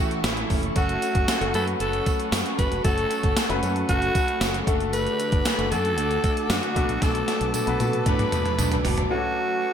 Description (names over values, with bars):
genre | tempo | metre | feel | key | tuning
1980s-style pop | 115 BPM | 4/4 | straight | unclear | A4 = 440 Hz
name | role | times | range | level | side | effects
warm studio violin section | second line | 0.0-0.6 s | E4 to F#4 | -35 LUFS | right 1 dB | digital delay
crunchy overdriven guitar | accompaniment | 0.0-9.6 s | A2 to F#4 | -36 LUFS | equal | lush chorus
warm concert grand piano | accompaniment | 0.0-9.7 s | A2 to C#5 | -31 LUFS | left 4 dB | none
glassy FM pad | sustained chords | 0.0-9.7 s | A4 to D6 | -32 LUFS | left 2 dB | ensemble chorus, built-in reverb
mellow electric guitar | riff | 0.0-9.7 s | E3 to F#4 | -32 LUFS | right 5 dB | ensemble chorus
gated 80s digital drum machine | drums | 0.1-9.1 s | hi-hat, kick drum, snare drum, tambourine, toms | -25 LUFS | equal | gated reverb, gated reverb snare
mellow fretless electric bass | bass | 0.2-9.0 s | E#1 to B2 | -29 LUFS | equal | none
tambourine | percussion | 0.2-9.0 s | none | -40 LUFS | right 6 dB | none
breathy alto saxophone | melody | 0.8-9.7 s | F#4 to B4 | -27 LUFS | equal | none
room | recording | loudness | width
moderate plate reverb, RT60 1.6 s | bright 1980s-style digital production | -21 LUFS | side -8 dB against mid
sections
0.0-9.1 A section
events
drum fill 7.0-9.1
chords
0.0 A; 0.8 F#m; 4.7 D/F#; 6.8 Bm7; 9.1 F#m